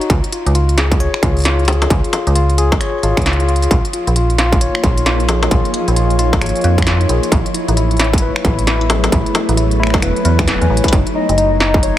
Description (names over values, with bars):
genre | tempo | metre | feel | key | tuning
IDM | 133 BPM | 4/4 | swing 62% on 16ths | unclear | A4 = 440 Hz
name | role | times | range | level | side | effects
tine electric piano | arpeggios | 0.0-12.0 s | Eb4 to G#5 | -19 LUFS | left 3 dB | medium tremolo, ping-pong delay
industrial drum kit | drums | 0.0-11.9 s | finger snaps, hi-hat, snare drum, struck metal | -20 LUFS | equal | small room ambience
metallic FM bass | bass | 0.1-11.9 s | E1 to F2 | -15 LUFS | right 1 dB | none
electronic kick drum | drums | 0.1-11.8 s | none | -16 LUFS | right 1 dB | distortion, small room ambience
glassy FM pad | sustained chords | 4.0-12.0 s | F3 to C6 | -21 LUFS | equal | ensemble chorus, built-in reverb
warbly nostalgic lead | melody | 11.2-11.9 s | Db5 to Eb5 | -18 LUFS | left 3 dB | wide subtle chorus
room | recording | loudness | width
digital ambience | heavily compressed radio sound | -12 LUFS | side -13 dB against mid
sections
0.0-10.9 A section; 10.9-12.0 B section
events
drum fill 10.7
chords
0.1 Db; 3.7 Bbm7; 7.3 Amaj9; 10.9 Gb6